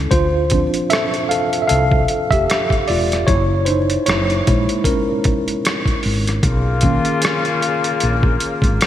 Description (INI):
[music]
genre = R&B, neo-soul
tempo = 76 BPM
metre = 4/4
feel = swing 57% on 16ths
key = unclear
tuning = A4 = 439 Hz
[part]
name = tine electric piano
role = accompaniment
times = 0.0-8.9 s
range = D#3 to F5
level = -18 LUFS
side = equal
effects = overdrive, fast stereo tremolo
[part]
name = woody fretless electric bass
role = bass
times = 0.0-8.8 s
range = E1 to D2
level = -19 LUFS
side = equal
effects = none
[part]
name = boom bap sampler-style drum kit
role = drums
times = 0.1-8.9 s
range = hi-hat, kick drum, rim click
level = -19 LUFS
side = equal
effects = gated reverb
[part]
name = mellow horn section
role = stabs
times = 6.4-8.9 s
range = C#3 to F4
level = -19 LUFS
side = left 5 dB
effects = ping-pong delay
[sound]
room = moderate lush hall reverb, RT60 2.9 s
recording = bright 1980s-style digital production, vinyl crackle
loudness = -15 LUFS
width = side -11 dB against mid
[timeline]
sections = 0.1-8.9 A section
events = tine electric piano solo 0.1-8.9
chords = 0.1 Dm7; 3.3 F#7; 6.4 Bmaj9